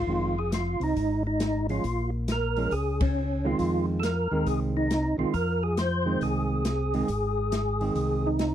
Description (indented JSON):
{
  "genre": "soul jazz organ trio",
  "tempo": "137 BPM",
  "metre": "4/4",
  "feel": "swing 66% on 8ths",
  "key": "F minor",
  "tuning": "A4 = 440 Hz",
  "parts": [
    { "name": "percussive tonewheel organ", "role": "melody", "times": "0.0-8.5 s", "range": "Db4 to C5", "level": "-28 LUFS", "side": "equal", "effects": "slow rotary speaker, overdrive, chorus vibrato" },
    { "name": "tonewheel organ", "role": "bass", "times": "0.0-8.5 s", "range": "F1 to F2", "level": "-28 LUFS", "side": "equal", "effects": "slow rotary speaker" },
    { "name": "hollow-body jazz guitar", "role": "accompaniment", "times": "0.1-8.4 s", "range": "Eb3 to Db4", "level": "-30 LUFS", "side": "right 4 dB", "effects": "none" },
    { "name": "open jazz drum kit", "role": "drums", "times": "0.5-8.5 s", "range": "hi-hat, kick drum, ride cymbal, snare drum", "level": "-31 LUFS", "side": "left 1 dB", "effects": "none" }
  ],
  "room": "studio ambience",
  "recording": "dry, close 1970s-style studio recording",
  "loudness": "-24 LUFS",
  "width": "side -10 dB against mid",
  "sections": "0.0-8.5 A section",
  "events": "band accent 2.9",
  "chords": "0.0 Fm7; 1.8 Bbm7; 3.6 Fm7"
}